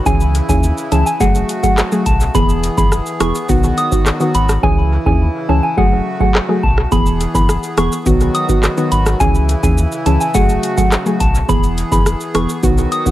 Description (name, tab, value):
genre	dancehall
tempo	105 BPM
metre	4/4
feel	straight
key	unclear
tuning	A4 = 440 Hz
part	accordion	sustained chords	0.0-13.1 s	C#3 to G#4	-24 LUFS	left 1 dB	sidechain pumping
part	soft synth bell	melody	0.1-13.0 s	F#5 to D#6	-20 LUFS	equal	chorus, dub echo
part	hollow square pluck	accompaniment	0.1-13.1 s	D#3 to G#4	-18 LUFS	right 1 dB	chorus, dub echo
part	sub bass with octave	bass	0.1-12.9 s	E1 to D#2	-17 LUFS	equal	none
part	booming analog drum machine	drums	0.1-13.1 s	handclaps, hi-hat, kick drum, rim click, shaker	-16 LUFS	equal	none
room	digital ambience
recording	echo-heavy mix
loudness	-12 LUFS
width	side -14 dB against mid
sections	0.0-13.1 A section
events	hi-hats muted 4.6-6.9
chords	0.1 C#m; 1.2 F#madd9; 2.3 E; 3.5 B; 4.6 C#m; 5.8 F#madd9; 6.9 E; 8.1 B; 9.2 C#m; 10.3 F#madd9; 11.5 E